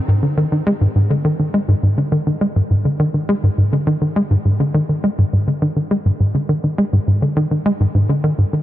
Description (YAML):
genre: ambient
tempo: 103 BPM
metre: 4/4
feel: straight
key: unclear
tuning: A4 = 440 Hz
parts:
  - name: tight sequencer bass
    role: solo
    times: 0.1-8.6 s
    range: Ab2 to Ab3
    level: -14 LUFS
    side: equal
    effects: wide subtle chorus, ping-pong delay
room: light reverb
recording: lossy compression artefacts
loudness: -15 LUFS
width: side -14 dB against mid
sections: 0.0-8.6 A section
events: none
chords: none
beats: 0.52 1.10 1.69 | 2.27 2.85 3.43 4.01 | 4.60 5.18 5.76 6.35 | 6.93 7.51 8.09